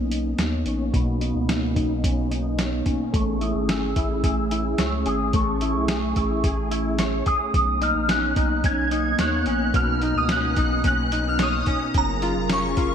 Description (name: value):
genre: dream pop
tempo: 109 BPM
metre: 4/4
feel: straight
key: unclear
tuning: A4 = 437 Hz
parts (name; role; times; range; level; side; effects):
- shimmering bell with halo; melody; 0.0-12.9 s; A#5 to G#6; -26 LUFS; equal; ensemble chorus, phaser, low-pass filter, digital delay
- hollow soft pad; sustained chords; 0.0-12.9 s; F#3 to A#4; -27 LUFS; right 1 dB; chorus, low-pass filter
- semi-hollow electric guitar; arpeggios; 0.0-12.9 s; B2 to C#5; -28 LUFS; left 3 dB; ensemble chorus, low-pass filter, digital delay
- saturated sub bass; bass; 0.0-12.9 s; E#1 to D#2; -28 LUFS; equal; none
- lo-fi sampler-style drum kit; drums; 0.1-12.9 s; hi-hat, kick drum, snare drum; -25 LUFS; equal; overdrive
room: moderate lush hall reverb, RT60 1.9 s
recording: bright 1980s-style digital production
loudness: -20 LUFS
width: side -8 dB against mid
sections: 0.0-12.9 A section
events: filter sweep 0.0-12.9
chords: 0.0 Bmaj9; 3.1 Amaj7; 7.5 Bmaj9; 11.9 F#maj7